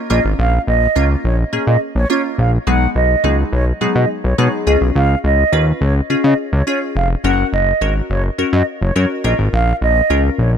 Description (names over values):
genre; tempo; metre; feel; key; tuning
pop; 105 BPM; 4/4; straight; unclear; A4 = 440 Hz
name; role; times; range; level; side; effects
glassy wavetable pluck; accompaniment; 0.0-10.4 s; F#3 to B4; -20 LUFS; left 2 dB; chorus
mellow concert flute; melody; 0.1-10.5 s; C#5 to F#5; -19 LUFS; right 3 dB; tape echo
fat analog bass; bass; 0.1-10.6 s; E#1 to C#3; -15 LUFS; equal; none
room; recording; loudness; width
studio reverb; none; -13 LUFS; side -8 dB against mid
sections
0.0-10.6 A section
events
none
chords
0.1 A#m; 2.7 G#m7/B; 4.7 C#; 7.2 F#; 9.2 A#m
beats
| 0.39 0.96 1.53 2.10 | 2.67 3.24 3.81 4.38 | 4.96 5.53 6.10 6.67 | 7.24 7.81 8.38 8.96 | 9.53 10.10